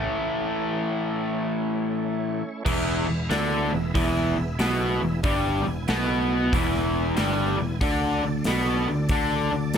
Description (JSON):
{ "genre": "blues rock power trio and southern rock", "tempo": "93 BPM", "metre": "4/4", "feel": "swing 65% on 8ths", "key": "E mixolydian", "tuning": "A4 = 440 Hz", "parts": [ { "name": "overdriven tonewheel organ", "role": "sustained chords", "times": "0.0-9.8 s", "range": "A3 to G#5", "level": "-36 LUFS", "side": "right 3 dB", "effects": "slow rotary speaker, chorus vibrato" }, { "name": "raw garage guitar", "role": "riff", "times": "0.0-9.7 s", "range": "E2 to D4", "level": "-24 LUFS", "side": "left 1 dB", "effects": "overdrive" }, { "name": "picked electric bass", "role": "bass", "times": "0.0-9.8 s", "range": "E1 to A2", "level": "-28 LUFS", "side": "equal", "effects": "none" }, { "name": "big rock drum kit", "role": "drums", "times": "2.7-9.8 s", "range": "crash cymbal, hi-hat, kick drum, snare drum", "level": "-29 LUFS", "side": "equal", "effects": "none" } ], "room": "light reverb", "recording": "none", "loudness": "-22 LUFS", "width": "side -8 dB against mid", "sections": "0.0-2.7 A section; 2.7-9.8 B section", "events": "break 0.1-2.7", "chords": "0.0 A; 2.7 E; 7.8 D5", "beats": "| 0.07 0.72 1.36 2.01 | 2.66 3.31 3.95 4.60 | 5.24 5.89 6.53 7.17 | 7.82 8.46 9.11 9.75" }